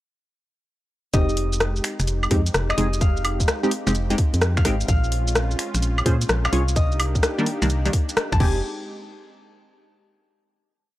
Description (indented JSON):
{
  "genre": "UK garage, two-step garage",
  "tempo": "128 BPM",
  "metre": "4/4",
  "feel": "swing 67% on 16ths",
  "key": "F minor",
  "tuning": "A4 = 439 Hz",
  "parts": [
    { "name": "concert harp", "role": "melody", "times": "1.1-8.6 s", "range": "Eb5 to A5", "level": "-33 LUFS", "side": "left 3 dB", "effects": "analog delay" },
    { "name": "warm analog pad", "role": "sustained chords", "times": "1.1-8.6 s", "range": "Ab3 to G4", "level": "-32 LUFS", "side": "equal", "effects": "wide subtle chorus, sidechain pumping" },
    { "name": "punchy chord stab", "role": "stabs", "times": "1.1-8.6 s", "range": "Eb3 to Db5", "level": "-25 LUFS", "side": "equal", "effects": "chorus, cassette tape, analog delay" },
    { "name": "organ-like FM bass", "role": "bass", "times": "1.1-8.6 s", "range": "F1 to Bb2", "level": "-22 LUFS", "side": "equal", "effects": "none" },
    { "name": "electronic kick drum", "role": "drums", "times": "1.1-8.5 s", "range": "none", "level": "-20 LUFS", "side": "equal", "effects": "none" },
    { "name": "garage drum kit", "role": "drums", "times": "1.1-8.5 s", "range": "crash cymbal, finger snaps, hi-hat, rim click, shaker, woodblock", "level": "-25 LUFS", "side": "equal", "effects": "none" }
  ],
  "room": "little or no reverb",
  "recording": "dry, gritty hardware recording",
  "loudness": "-19 LUFS",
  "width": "side -15 dB against mid",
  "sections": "1.1-8.6 drop; 8.6-10.5 final hit",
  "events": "drop 1.1-8.6",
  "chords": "1.1 Fm9; 4.9 Bbm9; 6.8 Cm9; 8.4 Fm9; 8.6 N.C.",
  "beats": "| 1.14 1.60 2.07 2.54 | 3.01 3.48 3.95 4.42 | 4.89 5.36 5.82 6.29 | 6.76 7.23 7.70 8.17"
}